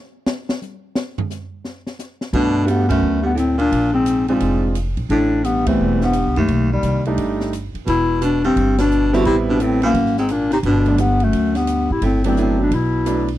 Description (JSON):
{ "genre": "jazz, small-group swing and bop", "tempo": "174 BPM", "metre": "4/4", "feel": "swing 64% on 8ths", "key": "G major", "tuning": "A4 = 440 Hz", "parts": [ { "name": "open jazz drum kit", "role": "drums", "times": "0.3-13.3 s", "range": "crash cymbal, hi-hat, kick drum, ride cymbal, rim click, snare drum, toms", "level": "-28 LUFS", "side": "equal", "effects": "none" }, { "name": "warm baritone saxophone", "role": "second line", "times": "2.3-13.3 s", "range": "D#2 to D3", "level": "-22 LUFS", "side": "right 4 dB", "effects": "none" }, { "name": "clear concert grand piano", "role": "accompaniment", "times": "2.3-13.3 s", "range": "F#3 to F#4", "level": "-22 LUFS", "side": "right 4 dB", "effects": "none" }, { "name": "upright bass", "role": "bass", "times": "2.3-13.4 s", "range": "E1 to G2", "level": "-21 LUFS", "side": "equal", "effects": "none" }, { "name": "breathy clarinet", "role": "melody", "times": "2.4-13.3 s", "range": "G3 to F#4", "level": "-18 LUFS", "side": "left 3 dB", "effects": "none" } ], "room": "small room ambience", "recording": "dry, close 1970s-style studio recording", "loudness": "-16 LUFS", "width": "side -14 dB against mid", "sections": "0.0-2.3 A section; 2.3-13.4 B section", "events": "drum solo 0.0-2.3; band accent 2.9, 5.6, 8.7", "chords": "0.0 N.C.; 2.3 Gmaj9; 3.7 Bb9; 5.1 Am7; 6.5 B7alt; 7.9 Em7; 9.3 Am7; 9.9 Ab9; 10.6 Gmaj9" }